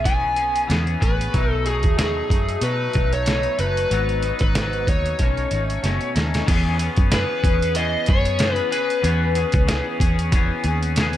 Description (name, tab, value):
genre	indie pop, bedroom pop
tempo	93 BPM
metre	4/4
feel	swing 55% on 16ths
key	E major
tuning	A4 = 441 Hz
part	overdriven slide guitar	melody	0.0-10.0 s	G#4 to G#5	-24 LUFS	left 1 dB	lush chorus, plate reverb, tape echo
part	electric guitar at the edge of break-up	accompaniment	0.0-11.2 s	G#2 to G#4	-26 LUFS	left 3 dB	analog chorus, warbly pitch drift, plate reverb
part	vintage muted fingered electric bass	bass	0.0-11.2 s	F#1 to B2	-23 LUFS	equal	none
part	trip hop sampler-style drum kit	drums	0.1-11.2 s	crash cymbal, hi-hat, kick drum, snare drum	-21 LUFS	equal	none
room	light reverb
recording	none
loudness	-18 LUFS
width	side -12 dB against mid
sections	0.0-6.5 A section; 6.5-11.2 B section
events	drum fill 5.8-6.5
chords	0.0 E6; 1.3 B7; 3.9 G#m7; 5.2 B9; 6.5 E6